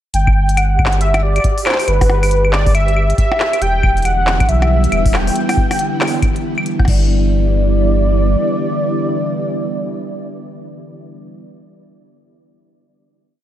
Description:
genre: IDM.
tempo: 138 BPM.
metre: 4/4.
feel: swing 62% on 16ths.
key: G major.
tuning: A4 = 440 Hz.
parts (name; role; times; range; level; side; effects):
warm velvety synth lead; melody; 0.1-11.3 s; B4 to G5; -19 LUFS; equal; chorus, digital delay.
warm sub bass; bass; 0.1-8.4 s; E1 to B1; -15 LUFS; equal; none.
glitchy drum kit; drums; 0.1-7.0 s; claves, crash cymbal, handclaps, hi-hat, percussion blips; -21 LUFS; left 1 dB; none.
flickering grainy texture; texture; 0.8-5.4 s; G4; -29 LUFS; right 2 dB; built-in reverb.
electronic kick drum; drums; 0.3-7.0 s; none; -16 LUFS; equal; none.
soft string machine; sustained chords; 3.9-11.3 s; D3 to E4; -20 LUFS; right 1 dB; ensemble chorus.
room: light reverb.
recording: dark, warm production.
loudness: -13 LUFS.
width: side -11 dB against mid.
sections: 0.1-7.1 chorus; 7.1-10.6 final hit.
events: none.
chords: 0.1 G5; 3.6 Em7; 6.9 G6.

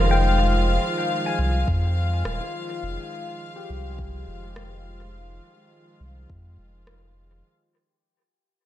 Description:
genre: ambient dub.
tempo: 104 BPM.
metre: 4/4.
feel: swing 60% on 16ths.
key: F minor.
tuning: A4 = 437 Hz.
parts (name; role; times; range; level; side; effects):
warm studio string section; sustained chords; 0.0-7.5 s; Eb3 to F5; -27 LUFS; equal; none.
soft dub sub bass; bass; 0.0-7.4 s; Eb1 to F2; -24 LUFS; equal; tube saturation.
pedal steel guitar; arpeggios; 0.1-5.0 s; F4 to Ab5; -32 LUFS; left 6 dB; low-pass filter, dub echo.
electronic kick drum; drums; 1.7-6.4 s; none; -31 LUFS; equal; none.
electronic rim click; drums; 2.3-7.0 s; none; -33 LUFS; equal; dub echo.
room: light reverb, digital ambience.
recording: dark, warm production.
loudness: -21 LUFS.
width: side -13 dB against mid.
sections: 0.0-7.4 A section.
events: fade-out 0.0-7.4.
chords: 0.0 Fm9.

